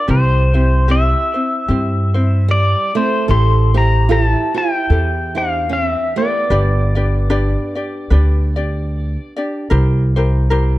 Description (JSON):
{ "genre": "Hawaiian", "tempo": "75 BPM", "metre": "4/4", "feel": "swing 57% on 8ths", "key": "unclear", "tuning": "A4 = 439 Hz", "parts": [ { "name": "pedal steel guitar", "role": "melody", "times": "0.0-9.3 s", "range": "C5 to C6", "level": "-19 LUFS", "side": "left 2 dB", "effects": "none" }, { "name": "ukulele", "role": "accompaniment", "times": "0.0-10.8 s", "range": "C4 to D5", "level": "-22 LUFS", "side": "left 1 dB", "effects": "none" }, { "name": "upright bass", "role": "bass", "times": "0.1-10.7 s", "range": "G1 to G2", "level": "-14 LUFS", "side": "equal", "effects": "none" }, { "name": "fingerpicked old ladder-braced acoustic guitar", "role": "second line", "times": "2.5-9.3 s", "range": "G3 to A4", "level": "-23 LUFS", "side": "right 7 dB", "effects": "none" } ], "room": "small room ambience", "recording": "dark, warm production", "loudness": "-13 LUFS", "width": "side -16 dB against mid", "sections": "0.0-10.8 A section", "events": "none", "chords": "0.1 C; 3.3 Am7; 6.5 G; 9.7 C7" }